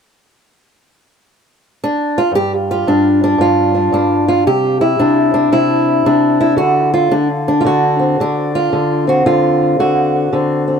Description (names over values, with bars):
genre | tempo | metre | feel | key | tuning
acoustic country blues, solo or duo | 113 BPM | 4/4 | swing 65% on 8ths | unclear | A4 = 440 Hz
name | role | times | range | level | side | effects
fingerpicked old ladder-braced acoustic guitar | solo | 1.8-10.8 s | G2 to G4 | -11 LUFS | equal | analog delay
room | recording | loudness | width
wet booth ambience, RT60 0.3 s | none | -11 LUFS | side -6 dB against mid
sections
0.2-2.3 A section; 2.3-10.8 B section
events
none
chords
0.2 N.C.; 2.3 G5; 4.5 N.C.; 6.6 D7